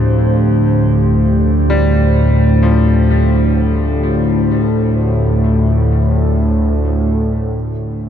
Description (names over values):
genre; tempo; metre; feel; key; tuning
dark ambient drone; free time; none; none; unclear; A4 = 440 Hz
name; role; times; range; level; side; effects
deep dark ambient pad; sustained chords; 0.0-8.1 s; D4 to F5; -22 LUFS; right 2 dB; chorus, built-in reverb
bright concert grand piano; arpeggios; 0.0-8.1 s; F2 to G3; -24 LUFS; left 3 dB; tape echo
analog drone; drone; 0.0-8.1 s; D2 to A2; -12 LUFS; equal; chorus
room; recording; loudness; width
moderate huge ambient reverb, RT60 7.5 s; none; -11 LUFS; side -9 dB against mid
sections
0.0-7.5 A section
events
fade-out on ambient pad 0.0-7.5; fade-out on grand piano 0.0-7.5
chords
0.0 F69/D